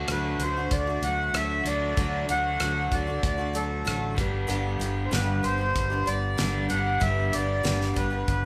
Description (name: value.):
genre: folk rock and heartland rock.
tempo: 95 BPM.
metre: 4/4.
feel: straight.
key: D major.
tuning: A4 = 436 Hz.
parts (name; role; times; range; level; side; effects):
picked steel-string acoustic guitar; accompaniment; 0.0-8.4 s; G2 to G4; -34 LUFS; equal; none.
raw garage guitar; riff; 0.0-8.5 s; G2 to G4; -37 LUFS; equal; overdrive.
modern bright fingered electric bass; bass; 0.0-8.5 s; G1 to D2; -33 LUFS; equal; none.
accordion; melody; 0.1-8.5 s; A4 to F#5; -31 LUFS; equal; none.
damped 70s drum kit; drums; 0.1-8.4 s; hi-hat, kick drum, rim click, snare drum; -32 LUFS; equal; none.
room: moderate large studio reverb, RT60 0.8 s.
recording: band playing live in one room.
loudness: -27 LUFS.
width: mono.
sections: 0.0-8.5 A section.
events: none.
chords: 0.0 D; 4.2 G.